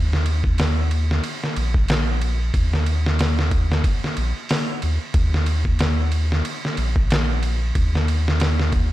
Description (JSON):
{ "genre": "trip hop", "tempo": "92 BPM", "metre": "4/4", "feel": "swing 56% on 16ths", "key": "unclear", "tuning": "A4 = 441 Hz", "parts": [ { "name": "warm sub bass", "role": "bass", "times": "0.0-8.9 s", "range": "Bb1 to Eb2", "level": "-20 LUFS", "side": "equal", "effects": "none" }, { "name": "trip hop sampler-style drum kit", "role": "drums", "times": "0.1-8.9 s", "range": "hi-hat, kick drum, ride cymbal, snare drum", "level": "-21 LUFS", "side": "equal", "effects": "none" } ], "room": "little or no reverb", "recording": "dark, warm production", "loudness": "-18 LUFS", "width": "side -15 dB against mid", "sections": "0.0-8.9 A section", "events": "none", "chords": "none", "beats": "0.58 1.23 1.89 | 2.54 3.19 3.84 4.50 | 5.15 5.80 6.45 7.10 | 7.76 8.41" }